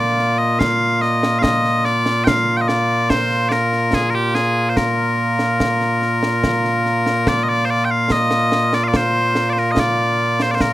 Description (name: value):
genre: scottish traditional, Scottish pipe music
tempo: 72 BPM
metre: 3/4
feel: straight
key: Bb major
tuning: A4 = 440 Hz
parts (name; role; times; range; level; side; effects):
- loud bright bagpipes; melody; 0.0-10.7 s; Bb2 to G5; -16 LUFS; equal; none
- concert snare drum and concert bass drum; drums; 0.2-10.7 s; none; -23 LUFS; right 1 dB; none
room: light reverb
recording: rough home demo mix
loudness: -15 LUFS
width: side -15 dB against mid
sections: 0.0-7.3 A section; 7.3-10.7 B section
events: none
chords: none